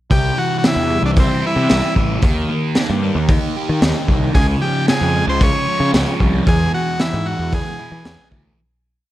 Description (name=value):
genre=psychedelic rock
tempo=113 BPM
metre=4/4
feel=straight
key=unclear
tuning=A4 = 440 Hz
part: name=combo organ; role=melody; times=0.1-8.3 s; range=C4 to Db5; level=-21 LUFS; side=equal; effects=analog delay
part: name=fuzz guitar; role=riff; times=0.1-8.6 s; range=E2 to G4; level=-21 LUFS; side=right 1 dB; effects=distortion, phaser
part: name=fuzz picked electric bass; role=bass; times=0.1-8.5 s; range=A1 to E3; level=-20 LUFS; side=equal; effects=overdrive
part: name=crunchy breakbeat drum kit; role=drums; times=0.1-8.4 s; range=hi-hat, kick drum, snare drum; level=-17 LUFS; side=equal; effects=none
room=light reverb, studio reverb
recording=none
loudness=-14 LUFS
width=side -14 dB against mid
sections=0.1-8.6 verse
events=fade-out 6.5-8.6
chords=0.1 C; 2.2 Eb; 4.3 Db; 6.5 E